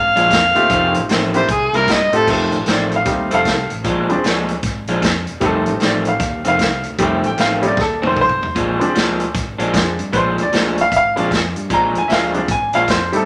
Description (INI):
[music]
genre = electric blues shuffle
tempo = 153 BPM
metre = 4/4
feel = swing 63% on 8ths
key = unclear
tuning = A4 = 440 Hz
[part]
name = overdriven harmonica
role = melody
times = 0.0-2.3 s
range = Ab4 to F5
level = -17 LUFS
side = equal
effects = none
[part]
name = fingered electric bass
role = bass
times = 0.0-13.3 s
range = E1 to A2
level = -29 LUFS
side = equal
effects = none
[part]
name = electric guitar through a small old amp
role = riff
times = 0.2-13.0 s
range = F2 to E4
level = -22 LUFS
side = equal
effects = spring reverb
[part]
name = vintage drum kit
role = drums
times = 0.2-13.2 s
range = crash cymbal, hi-hat, kick drum, snare drum, toms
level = -24 LUFS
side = equal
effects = none
[part]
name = bright upright piano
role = accompaniment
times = 0.6-13.3 s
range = F3 to Bb5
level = -20 LUFS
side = equal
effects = none
[sound]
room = moderate large studio reverb, RT60 1.3 s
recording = none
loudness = -17 LUFS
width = mono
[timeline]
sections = 0.0-2.3 A section; 2.3-13.3 A section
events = harmonica solo 0.0-2.3; drum fill 7.8-8.6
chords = 0.0 Bb7; 0.7 F7; 1.5 C7; 2.3 F7; 3.8 Bb7; 5.4 F7; 8.6 Bb7